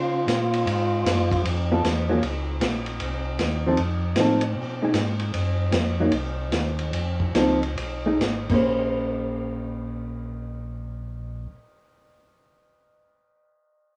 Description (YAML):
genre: soul jazz organ trio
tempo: 131-155 BPM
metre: 4/4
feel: swing 65% on 8ths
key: Bb minor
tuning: A4 = 440 Hz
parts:
  - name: percussive tonewheel organ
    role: melody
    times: 0.0-1.4 s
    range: F4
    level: -28 LUFS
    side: equal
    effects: slow rotary speaker, overdrive, cassette tape, plate reverb
  - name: mellow tonewheel organ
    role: bass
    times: 0.0-11.5 s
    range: G#1 to Db3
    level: -30 LUFS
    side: equal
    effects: slow rotary speaker
  - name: vintage drum kit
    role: drums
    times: 0.3-8.6 s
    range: crash cymbal, hi-hat, kick drum, ride cymbal, snare drum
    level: -30 LUFS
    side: equal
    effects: cassette tape
  - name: hollow-body jazz guitar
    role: accompaniment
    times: 1.7-11.6 s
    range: F3 to C5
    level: -26 LUFS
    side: equal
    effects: plate reverb
room: moderate small room ambience, RT60 0.5 s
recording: home recording on cassette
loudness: -24 LUFS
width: mono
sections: 0.0-2.2 A section; 2.2-8.7 B section; 8.7-12.3 C section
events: slowing down 5.3-8.7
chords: 0.0 Bbm; 0.7 Fm; 1.5 Fmaj7#11; 2.2 Bbm; 3.0 Cmadd11; 3.8 F7; 4.6 B6; 5.3 Gbmaj7; 6.1 Cm; 6.9 F7; 7.8 B6; 8.4 Bbm9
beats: 0.29 | 0.68 1.06 1.45 1.84 | 2.23 2.62 3.01 3.40 | 3.78 4.17 4.56 4.95 | 5.34 5.73 6.12 6.52 | 6.93 7.34 7.77 8.21 | 8.65 9.11 9.57 10.03 | 10.49 10.95 11.41